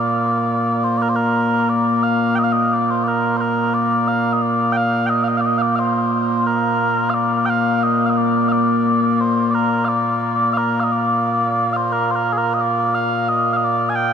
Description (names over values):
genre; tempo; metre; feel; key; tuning
scottish traditional, Scottish pipe music; 88 BPM; 4/4; straight; Bb major; A4 = 441 Hz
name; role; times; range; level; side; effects
mellow small bagpipes; solo; 0.0-14.1 s; Bb2 to Ab5; -16 LUFS; equal; none
room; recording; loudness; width
wet huge ambient reverb, RT60 7.9 s; in a vast, echoing space; -16 LUFS; side -7 dB against mid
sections
0.0-14.1 A section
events
none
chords
none